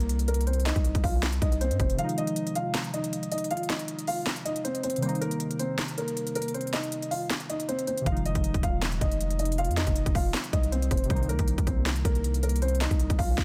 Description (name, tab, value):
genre	hip hop, trap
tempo	158 BPM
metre	4/4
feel	half-time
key	F minor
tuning	A4 = 440 Hz
part	dark concert grand piano	melody	0.0-13.3 s	Bb3 to F5	-34 LUFS	equal	low-pass filter, digital delay
part	long sustained 808-style bass	bass	0.0-2.0, 8.1-13.4 s	Eb1 to G2	-30 LUFS	equal	none
part	trap drum kit	drums	0.0-13.4 s	handclaps, hi-hat, kick drum, snare drum	-32 LUFS	equal	none
part	warbly lo-fi synth keys	accompaniment	1.9-13.4 s	C3 to Eb4	-37 LUFS	equal	chorus, low-pass filter
room	digital ambience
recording	dense, heavily limited modern master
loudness	-28 LUFS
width	mono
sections	0.0-13.4 A section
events	filter sweep 0.0-2.0; break 2.0-8.1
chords	0.0 Cm7; 2.0 Fm7; 5.0 Cm7; 8.1 Fm7; 11.1 Cm7